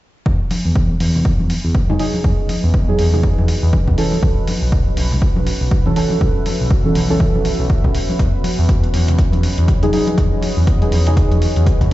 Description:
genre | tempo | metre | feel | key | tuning
deep house | 121 BPM | 4/4 | swing 59% on 16ths | E major | A4 = 441 Hz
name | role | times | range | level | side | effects
smooth gliding synth bass | bass | 0.3-11.9 s | B1 to E2 | -17 LUFS | equal | sidechain pumping
electronic kick drum | drums | 0.3-11.9 s | none | -17 LUFS | equal | none
deep dark ambient pad | texture | 1.4-11.9 s | C#4 to E5 | -26 LUFS | equal | chorus, built-in reverb, sidechain pumping
electronic hi-hat | drums | 0.5-11.9 s | none | -30 LUFS | equal | none
congas | percussion | 0.5-11.9 s | none | -25 LUFS | left 1 dB | sidechain pumping on perc
deep mellow chord stab | stabs | 1.9-11.9 s | E3 to A4 | -20 LUFS | equal | chorus, sidechain pumping, ping-pong delay
room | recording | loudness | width
little or no reverb | played on a big sound system in a bare room, stone room reverb, vinyl crackle, nothing above 7.9 kHz | -14 LUFS | side -16 dB against mid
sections
0.3-11.9 A section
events
none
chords
0.3 Emaj9; 4.2 B9sus4; 8.2 Emaj9

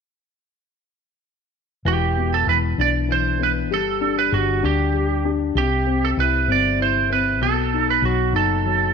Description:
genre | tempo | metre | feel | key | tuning
pop | 65 BPM (dotted quarters) | 6/8 | straight | E minor | A4 = 440 Hz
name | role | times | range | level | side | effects
lightly driven lead guitar | melody | 1.9-8.9 s | F#4 to D5 | -20 LUFS | right 10 dB | none
warm grand piano | accompaniment | 1.9-8.9 s | B2 to E4 | -23 LUFS | left 10 dB | none
woody fretless electric bass | bass | 1.9-8.9 s | E1 to D2 | -23 LUFS | equal | none
room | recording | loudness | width
moderate echo chamber reverb, RT60 1.7 s, small room ambience | 1960s-style stereo with parts hard left and right | -18 LUFS | side -6 dB against mid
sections
1.9-8.9 A section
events
none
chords
1.9 E5; 3.7 G5; 5.6 C; 7.4 B7

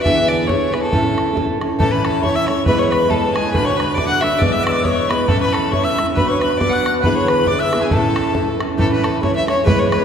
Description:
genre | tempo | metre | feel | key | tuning
celtic folk, Celtic polka | 137 BPM | 2/4 | swing 57% on 8ths | A major | A4 = 440 Hz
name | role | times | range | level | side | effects
clear fiddle | melody | 0.0-10.0 s | G#4 to F#5 | -20 LUFS | left 1 dB | none
fingerpicked steel-string acoustic guitar | accompaniment | 0.0-10.0 s | D2 to B4 | -18 LUFS | right 1 dB | none
bodhran | percussion | 0.1-10.0 s | none | -22 LUFS | equal | none
breathy bright mid whistle | second line | 1.8-8.6 s | G#5 to F#6 | -23 LUFS | left 3 dB | none
room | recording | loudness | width
wet church reverb, RT60 2.9 s | recorded in a church or concert hall | -14 LUFS | side -7 dB against mid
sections
0.0-1.8 A section; 1.8-8.8 B section; 8.8-10.0 B section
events
none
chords
0.0 E7; 0.9 A; 2.7 E; 3.5 D; 4.4 E; 5.3 A; 6.2 Bm; 7.0 E7; 7.9 A

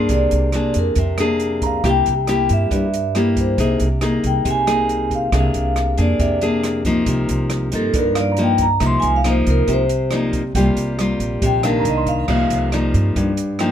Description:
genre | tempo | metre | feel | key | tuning
bossa nova | 138 BPM | 4/4 | straight | C minor | A4 = 440 Hz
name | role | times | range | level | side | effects
vibraphone with medium mallets | melody | 0.0-12.7 s | A4 to C6 | -21 LUFS | equal | none
dark grand piano | accompaniment | 0.0-3.6, 8.2-13.7 s | D5 to C6 | -30 LUFS | right 5 dB | none
nylon-string guitar | accompaniment | 0.0-13.7 s | G2 to Ab4 | -20 LUFS | left 2 dB | none
upright bass | bass | 0.0-13.7 s | Bb1 to G2 | -21 LUFS | right 1 dB | none
open jazz drum kit | drums | 0.1-13.7 s | crash cymbal, hi-hat, kick drum, rim click | -26 LUFS | right 1 dB | none
room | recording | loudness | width
light reverb | close, detailed microphones | -16 LUFS | side -10 dB against mid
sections
0.0-12.3 A section; 12.3-13.7 A section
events
vibraphone solo 0.0-13.7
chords
0.1 Bb9/C; 1.8 C7; 3.6 Abadd9/C; 5.3 Bb9/C; 7.1 Cm7; 8.8 F7sus4/C; 10.6 Eb69/C; 11.9 Cm11

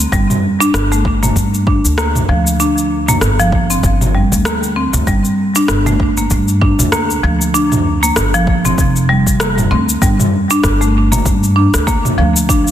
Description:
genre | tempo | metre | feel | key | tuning
organic downtempo | 97 BPM | 4/4 | swing 57% on 16ths | G minor | A4 = 440 Hz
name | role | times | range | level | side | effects
upright bass | bass | 0.0-12.7 s | F1 to G2 | -16 LUFS | equal | sidechain pumping
deep house drum kit | drums | 0.0-12.7 s | rim click, shaker, toms | -18 LUFS | equal | overdrive
marimba with medium hard mallets | arpeggios | 0.1-12.7 s | F3 to D4 | -15 LUFS | equal | tape echo
electronic kick drum | drums | 0.1-12.6 s | none | -17 LUFS | equal | overdrive
room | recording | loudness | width
moderate lush hall reverb, RT60 2.9 s | dense, heavily limited modern master | -11 LUFS | side -11 dB against mid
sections
0.0-10.0 A section; 10.0-12.7 B section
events
none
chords
0.0 Gm7; 10.0 Gm

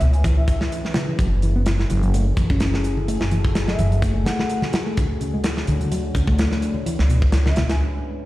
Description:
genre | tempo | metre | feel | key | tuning
breakbeat, breaks | 127 BPM | 4/4 | swing 54% on 16ths | F# minor | A4 = 440 Hz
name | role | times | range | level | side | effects
mellow hollow baroque flute | melody | 0.0-0.7, 3.7-4.6, 7.5-7.8 s | E5 to G#5 | -31 LUFS | equal | old record sound, dub echo
deep dark ambient pad | sustained chords | 0.0-8.3 s | G#3 to C#5 | -31 LUFS | left 2 dB | chorus, built-in reverb, vintage 12-bit sampler grit, sidechain pumping
picked electric bass | riff | 0.0-7.6 s | B2 to C#4 | -26 LUFS | left 1 dB | vintage 12-bit sampler grit, dub echo
upright bass | bass | 0.0-7.8 s | F#1 to D2 | -20 LUFS | equal | tube saturation
tight metal drum kit | drums | 0.0-7.8 s | hi-hat, kick drum, snare drum | -24 LUFS | equal | none
congas | percussion | 1.9-7.8 s | none | -31 LUFS | equal | none
room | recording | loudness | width
light reverb | played on a big sound system in a bare room, stone room reverb, vinyl crackle | -18 LUFS | side -17 dB against mid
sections
0.0-8.3 A section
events
break 7.8-8.3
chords
0.0 C#m7; 1.2 F#m9; 5.0 Dmaj7; 6.9 C#m7

